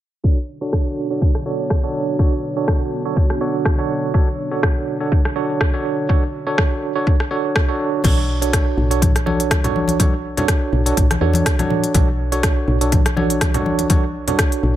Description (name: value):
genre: afro house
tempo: 123 BPM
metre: 4/4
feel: swing 55% on 16ths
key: B minor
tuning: A4 = 442 Hz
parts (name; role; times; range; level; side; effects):
- dark analog pad; sustained chords; 0.2-8.0 s; B3 to C#5; -28 LUFS; equal; chorus, phaser, vintage 12-bit sampler grit, sidechain pumping
- tine electric piano; stabs; 0.2-14.7 s; D4 to C#5; -21 LUFS; right 4 dB; medium stereo tremolo, sidechain pumping, low-pass filter, analog delay
- electronic kick drum; drums; 0.2-14.5 s; none; -17 LUFS; equal; none
- afro-pop drum kit; drums; 0.7-14.7 s; crash cymbal, hi-hat, rim click, toms; -24 LUFS; equal; analog delay
- woody FM bass; bass; 8.0-14.8 s; B1 to E2; -21 LUFS; equal; sidechain pumping
- congas; percussion; 8.0-14.4 s; none; -23 LUFS; left 3 dB; none
room: light reverb, digital ambience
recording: echo-heavy mix, low-pass filter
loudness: -16 LUFS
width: side -12 dB against mid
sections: 0.2-8.0 A section; 8.0-14.8 B section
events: filter sweep on tine electric piano 0.2-8.0; filter sweep 0.2-8.0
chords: 0.2 Bm9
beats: | 0.24 0.73 1.22 1.70 | 2.19 2.68 3.17 3.65 | 4.14 4.63 5.12 5.61 | 6.09 6.58 7.07 7.56 | 8.04 8.53 9.02 9.51 | 9.99 10.48 10.97 11.46 | 11.95 12.43 12.92 13.41 | 13.90 14.39